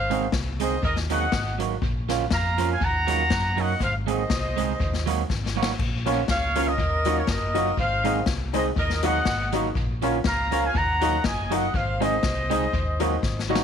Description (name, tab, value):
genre	ska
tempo	121 BPM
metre	4/4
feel	swing 54% on 8ths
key	unclear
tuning	A4 = 440 Hz
part	warm horn section	melody	0.0-13.5 s	Bb4 to Bb5	-26 LUFS	equal	none
part	fingered electric bass	bass	0.0-13.6 s	Gb1 to Gb2	-28 LUFS	equal	none
part	electric guitar at the edge of break-up	accompaniment	0.1-13.6 s	F3 to Ab4	-28 LUFS	right 12 dB	tape echo
part	street-band drum kit	drums	0.1-13.6 s	crash cymbal, hi-hat, kick drum, snare drum	-28 LUFS	left 2 dB	tape echo
part	warm upright piano	stabs	6.1-13.6 s	Db4 to Eb5	-29 LUFS	left 14 dB	none
room	light reverb, small room ambience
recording	1960s-style stereo with parts hard left and right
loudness	-22 LUFS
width	side -8 dB against mid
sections	0.0-13.6 A section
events	drum fill 5.3-5.8, 13.2-13.6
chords	0.0 Ab; 0.8 Ebm; 1.8 Bbm; 2.8 Ebm; 3.8 Ab; 4.8 Ebm; 5.8 Bbm; 6.8 Ebm; 7.8 Ab; 8.8 Ebm; 9.8 Bbm; 10.7 Ebm; 11.7 Ab; 12.7 Ebm